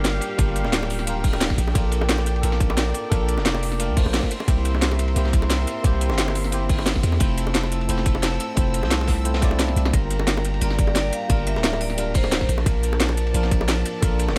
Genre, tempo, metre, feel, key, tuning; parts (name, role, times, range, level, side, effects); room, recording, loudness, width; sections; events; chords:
liquid drum and bass; 176 BPM; 4/4; straight; G dorian; A4 = 440 Hz
bright tine electric piano; accompaniment; 0.0-14.4 s; F3 to D5; -31 LUFS; equal; subtle chorus, tape echo
warm chamber string section; sustained chords; 0.0-14.4 s; G4 to E6; -36 LUFS; equal
long sustained 808-style bass; bass; 0.0-14.4 s; D1 to E2; -26 LUFS; equal
crunchy breakbeat drum kit; drums; 0.0-14.4 s; hi-hat, ride cymbal, snare drum; -34 LUFS; equal; high-pass filter on cymbals, studio reverb, high-pass filter on hats, high-pass filter on snare, high-pass filter on room
drum and bass drum kit; drums; 0.0-14.3 s; hi-hat, snare drum; -27 LUFS; equal; studio reverb
electronic kick drum; drums; 0.4-14.1 s; -23 LUFS; equal; studio reverb
bongos; percussion; 0.6-14.3 s; -34 LUFS; equal
vibraphone with hard mallets; melody; 9.9-13.6 s; Bb4 to F5; -33 LUFS; equal; tape echo
small room ambience; -22 LUFS; mono
0.0-14.4 A section
kick drops out 9.6-9.9
0.0 Gm7; 1.6 Bbmaj7; 4.3 C7; 7.2 Fmaj7; 9.9 Gm7; 12.5 Bbmaj7